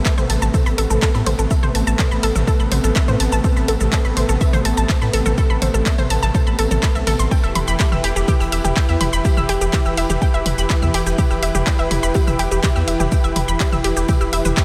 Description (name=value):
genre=melodic techno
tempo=124 BPM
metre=4/4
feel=straight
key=A minor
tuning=A4 = 442 Hz
part: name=lush unison pad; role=sustained chords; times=0.0-14.6 s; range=C3 to B4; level=-26 LUFS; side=equal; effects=chorus, sidechain pumping
part: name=open jazz drum kit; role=drums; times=0.0-14.6 s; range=hi-hat, snare drum, tambourine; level=-40 LUFS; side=equal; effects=none
part: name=unison pluck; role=arpeggios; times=0.1-14.6 s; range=G4 to E6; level=-26 LUFS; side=equal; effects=sidechain pumping, analog delay
part: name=electronic kick drum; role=drums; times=0.1-14.6 s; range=none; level=-20 LUFS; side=equal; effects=overdrive
part: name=punchy analog drum machine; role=drums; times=0.1-14.6 s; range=handclaps, hi-hat, shaker, toms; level=-27 LUFS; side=equal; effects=overdrive, sidechain pumping on perc, sidechain pumping on hats, sidechain pumping on toms, sidechain pumping on cymbals
part: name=round analog bass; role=bass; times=0.2-14.5 s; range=E1 to A2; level=-23 LUFS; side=equal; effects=tube saturation, sidechain pumping
room=moderate huge ambient reverb, RT60 6.4 s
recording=dreamy mix soaked in reverb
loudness=-18 LUFS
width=mono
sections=0.0-14.6 A section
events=none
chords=0.0 Amadd9; 7.3 Em